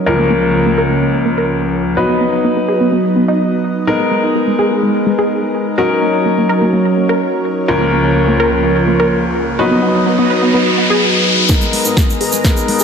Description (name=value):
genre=progressive house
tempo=126 BPM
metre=4/4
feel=straight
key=G# dorian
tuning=A4 = 439 Hz
part: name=lush unison pad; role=sustained chords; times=0.0-12.8 s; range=C#2 to A#5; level=-16 LUFS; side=right 1 dB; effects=chorus, sidechain pumping
part: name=clear baby grand piano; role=stabs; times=0.0-12.8 s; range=C#2 to B4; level=-16 LUFS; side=left 2 dB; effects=sidechain pumping, low-pass filter, tape echo
part: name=downlifter and riser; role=sound effects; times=0.0-0.1, 9.4-11.5 s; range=none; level=-18 LUFS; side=left 1 dB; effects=none
part: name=wide unison pluck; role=arpeggios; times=0.1-12.8 s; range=G#3 to B4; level=-18 LUFS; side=right 1 dB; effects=vintage 12-bit sampler grit, sidechain pumping, tape echo
part: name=fat analog bass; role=bass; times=11.5-12.8 s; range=G#1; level=-30 LUFS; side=equal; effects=none
part: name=big-room dance drum kit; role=drums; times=11.5-12.8 s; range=hi-hat, snare drum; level=-19 LUFS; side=equal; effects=sidechain pumping on hats, sidechain pumping on toms
part: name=electronic kick drum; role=drums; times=11.5-12.5 s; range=none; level=-14 LUFS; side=equal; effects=none
part: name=egg shaker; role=percussion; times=11.5-12.8 s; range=none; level=-20 LUFS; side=right 2 dB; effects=none
room=moderate lush hall reverb, RT60 1.9 s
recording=none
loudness=-11 LUFS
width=side -6 dB against mid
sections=0.0-11.5 A section; 11.5-12.8 B section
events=filter sweep on synth pluck 0.0-11.5; filter sweep on analog synth pad 0.0-11.5; riser 9.4-11.5; build-up 11.5-12.8; drum fill 11.5-12.8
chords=0.1 A#m/C#; 2.0 B; 3.9 G#madd9; 5.8 D#m7; 7.7 A#m/C#; 9.6 B; 11.5 G#madd9